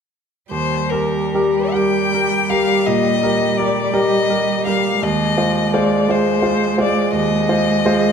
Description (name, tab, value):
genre	classical, slow romantic movement for piano quartet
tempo	47-58 BPM (dotted quarters)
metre	12/8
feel	rubato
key	Eb major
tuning	A4 = 441 Hz
part	rich violin	melody	0.5-8.1 s	Bb4 to G5	-20 LUFS	left 6 dB	none
part	clear cello	second line	0.5-8.1 s	G3 to Ab3	-21 LUFS	right 6 dB	none
part	bright grand piano	accompaniment	0.5-8.1 s	Eb2 to C5	-18 LUFS	left 1 dB	none
room	moderate recital hall reverb, RT60 1.9 s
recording	minimal, uncompressed stereo recording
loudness	-15 LUFS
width	side -7 dB against mid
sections	0.5-8.1 A section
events	none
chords	0.5 Eb; 5.0 Fm7/Eb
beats	| 0.51 1.75 2.87 3.94 | 5.02 6.09 7.14